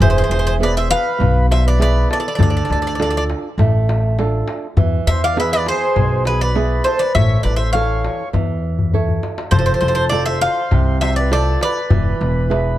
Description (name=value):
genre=greek folk, Greek bouzouki band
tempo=101 BPM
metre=4/4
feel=straight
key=unclear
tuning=A4 = 440 Hz
part: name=Greek bouzouki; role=melody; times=0.0-12.8 s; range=B4 to F5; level=-20 LUFS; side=equal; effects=none
part: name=mellow accordion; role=second line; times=0.0-12.8 s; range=G#4 to D5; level=-24 LUFS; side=equal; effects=none
part: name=flamenco guitar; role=accompaniment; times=0.0-12.8 s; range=B2 to C#5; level=-23 LUFS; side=right 5 dB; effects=none
part: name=upright bass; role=bass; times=0.0-12.8 s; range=E1 to E2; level=-18 LUFS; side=equal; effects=none
part: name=darbuka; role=percussion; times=0.0-12.7 s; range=none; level=-20 LUFS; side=left 2 dB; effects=none
room=light reverb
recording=dark, warm production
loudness=-14 LUFS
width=side -14 dB against mid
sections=0.0-12.8 A section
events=drum fill 8.8-9.5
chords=0.0 E; 2.4 Dm; 4.8 E; 7.1 A; 9.5 F; 11.9 E